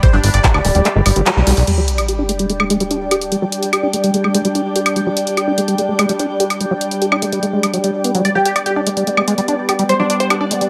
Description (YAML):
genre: psychedelic trance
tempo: 146 BPM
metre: 4/4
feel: straight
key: G major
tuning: A4 = 440 Hz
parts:
  - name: supersaw stab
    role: melody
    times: 0.0-1.6, 8.2-10.7 s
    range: D4 to D5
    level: -22 LUFS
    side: equal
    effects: phaser, cassette tape, sidechain pumping, tape echo
  - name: evolving wavetable pad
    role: sustained chords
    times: 0.0-10.7 s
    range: G3 to G4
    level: -26 LUFS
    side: equal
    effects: chorus, built-in reverb, sidechain pumping
  - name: liquid acid bass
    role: riff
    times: 0.0-10.7 s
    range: F#3 to G4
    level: -22 LUFS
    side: equal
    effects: chorus, sidechain pumping, delay
  - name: drum and bass drum kit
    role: drums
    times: 0.0-10.7 s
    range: crash cymbal, handclaps, hi-hat, woodblock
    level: -21 LUFS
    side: equal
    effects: none
  - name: electronic kick drum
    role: drums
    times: 0.0-0.5 s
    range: none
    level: -14 LUFS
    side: equal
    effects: none
  - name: airy breathy pad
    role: texture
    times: 0.0-10.7 s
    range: G4 to B5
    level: -25 LUFS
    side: equal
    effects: chorus, phaser, sidechain pumping
  - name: fat analog bass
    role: bass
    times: 0.1-1.6 s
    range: D1 to B1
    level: -16 LUFS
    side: equal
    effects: none
  - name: sub drop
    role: sound effects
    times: 1.7-3.3 s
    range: none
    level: -24 LUFS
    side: equal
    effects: none
room: moderate lush hall reverb, RT60 1.9 s, digital ambience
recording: none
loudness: -16 LUFS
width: mono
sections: 0.0-1.7 A section; 1.7-10.7 B section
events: filter sweep on acid bass 0.0-1.7; kick drops out 0.9-1.7; band accent 1.3; impact 1.7-3.3; filter sweep on ambient pad 1.7-10.7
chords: 0.0 G5